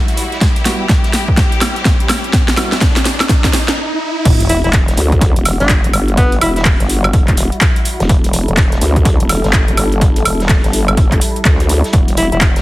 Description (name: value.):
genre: bass house.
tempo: 125 BPM.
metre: 4/4.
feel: swing 62% on 16ths.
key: E minor.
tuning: A4 = 439 Hz.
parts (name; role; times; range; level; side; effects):
bright studio string section; sustained chords; 0.0-12.6 s; G3 to G4; -24 LUFS; left 1 dB; sidechain pumping, low-pass filter.
riser and sub drop; sound effects; 1.3-6.2 s; none; -23 LUFS; equal; none.
big-room dance drum kit; drums; 0.1-12.6 s; crash cymbal, handclaps, hi-hat, snare drum, woodblock; -17 LUFS; equal; overdrive.
vintage drum kit; drums; 0.1-12.6 s; hi-hat, snare drum; -30 LUFS; right 1 dB; none.
electronic kick drum; drums; 0.4-12.5 s; none; -13 LUFS; equal; overdrive.
percussive organ stab; stabs; 0.7-2.8 s; G3 to F#4; -25 LUFS; right 1 dB; chorus, sidechain pumping, ping-pong delay.
vowel-sweep wobble bass; bass; 4.3-12.6 s; E1 to D2; -15 LUFS; equal; chorus, overdrive, sidechain pumping.
breathy alto saxophone; melody; 4.5-6.6, 12.2-12.4 s; B3 to E4; -18 LUFS; left 1 dB; ping-pong delay.
room: studio reverb.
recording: heavily compressed radio sound, multiband compression.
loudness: -10 LUFS.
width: side -17 dB against mid.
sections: 0.0-4.3 A section; 4.3-12.6 B section.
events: build-up 0.0-4.3; drum fill 0.0-3.8; filter sweep on synth stab 0.0-4.3; riser 1.3-4.3; stop 3.8-4.3; drop 4.3-12.6; impact 4.3-6.2.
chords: 0.0 Emadd9.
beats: | 0.41 0.89 1.37 1.85 | 2.33 2.81 3.29 3.77 | 4.25 4.73 5.21 5.69 | 6.17 6.65 7.13 7.61 | 8.09 8.57 9.05 9.53 | 10.01 10.49 10.97 11.45 | 11.93 12.41.